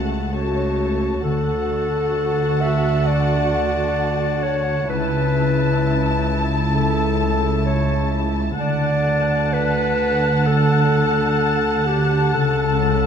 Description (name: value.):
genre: cinematic, emotional film score for orchestra.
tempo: 65 BPM.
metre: 4/4.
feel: rubato.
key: D major.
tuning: A4 = 439 Hz.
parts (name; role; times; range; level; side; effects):
muted studio violin section; melody; 0.0-13.1 s; A5; -32 LUFS; left 5 dB; none.
muted studio violin section; second line; 0.0-13.1 s; C#5 to A5; -28 LUFS; left 2 dB; none.
warm clarinet; second line; 0.0-13.1 s; F#4 to E5; -22 LUFS; left 1 dB; none.
muted studio viola section; accompaniment; 0.0-13.1 s; A3 to F#5; -26 LUFS; equal; none.
concert harp; arpeggios; 0.0-13.1 s; C#3 to F#5; -27 LUFS; left 10 dB; none.
muted studio cello section; bass; 0.0-13.1 s; C#3 to D3; -24 LUFS; right 4 dB; none.
muted studio double bass section; bass; 0.0-13.1 s; C#2 to D2; -24 LUFS; right 2 dB; none.
room: wet scoring stage reverb, RT60 1.5 s.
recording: none.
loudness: -17 LUFS.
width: side -7 dB against mid.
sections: 0.0-13.1 A section.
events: none.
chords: 0.0 F#m/C#; 1.2 D; 4.9 A/C#; 8.6 D; 12.3 F#m/C#.